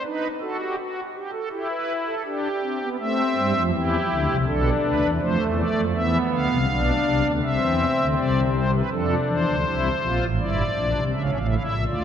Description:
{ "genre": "classical, baroque-style 3-part fugue for pipe organ", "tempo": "81 BPM", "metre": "4/4", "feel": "straight", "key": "D minor from 8.9 s", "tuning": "A4 = 440 Hz", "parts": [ { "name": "pipe organ, strings celeste", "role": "solo", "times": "0.0-12.0 s", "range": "G1 to F5", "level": "-21 LUFS", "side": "equal", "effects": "none" } ], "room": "wet cathedral reverb, RT60 4.1 s", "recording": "dark, warm production", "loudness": "-21 LUFS", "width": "side -8 dB against mid", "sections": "0.0-8.9 A section; 8.9-12.0 B section", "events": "none", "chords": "0.1 B/D#; 1.5 Em; 3.0 Am; 4.5 Bm7b5; 5.9 E5; 7.4 Cadd9; 8.9 Dm; 10.4 Em7b5/G; 11.1 A", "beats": "| 0.05 0.78 1.51 2.25 | 3.00 3.74 4.47 5.21 | 5.95 6.68 7.43 8.17 | 8.92 9.66 10.40 11.14 | 11.88" }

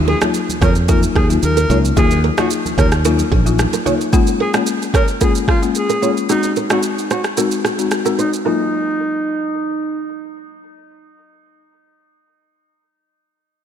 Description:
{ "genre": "afrobeats", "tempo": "111 BPM", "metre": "4/4", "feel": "straight", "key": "Eb dorian", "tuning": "A4 = 436 Hz", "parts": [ { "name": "folk marimba with medium mallets", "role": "accompaniment", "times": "0.0-11.8 s", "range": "Gb3 to Gb4", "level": "-19 LUFS", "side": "left 6 dB", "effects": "low-pass filter" }, { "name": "fretless electric bass", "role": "bass", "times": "0.0-3.6 s", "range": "Bb1 to F2", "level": "-16 LUFS", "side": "equal", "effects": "none" }, { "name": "breathy alto saxophone", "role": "melody", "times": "0.1-10.0 s", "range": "Eb4 to Bb4", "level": "-22 LUFS", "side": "right 1 dB", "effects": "low-pass filter, ping-pong delay" }, { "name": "nylon-string guitar", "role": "riff", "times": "0.1-8.6 s", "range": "Ab4 to Eb5", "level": "-23 LUFS", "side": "right 8 dB", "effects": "low-pass filter, ping-pong delay" }, { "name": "afro-pop drum kit", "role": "drums", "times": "0.2-8.4 s", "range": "kick drum, rim click, shaker", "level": "-19 LUFS", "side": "right 1 dB", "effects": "none" }, { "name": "congas", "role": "percussion", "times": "0.2-4.0 s", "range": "none", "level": "-27 LUFS", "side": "right 2 dB", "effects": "none" } ], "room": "light reverb, studio ambience", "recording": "none", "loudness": "-14 LUFS", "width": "side -9 dB against mid", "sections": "0.0-8.5 A section; 8.5-12.8 B section", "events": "filter sweep 0.0-8.5; kick muted 6.3-8.5", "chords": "0.0 Ebmadd9; 4.1 Bbm7; 6.3 Ab7; 8.5 Ebmadd9", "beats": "0.35 0.89 1.43 | 1.97 2.51 3.05 3.59 | 4.13 4.67 5.21 5.75 | 6.29 6.83 7.37 7.91 | 8.45 8.99 9.54 10.08 | 10.62 11.16 11.70" }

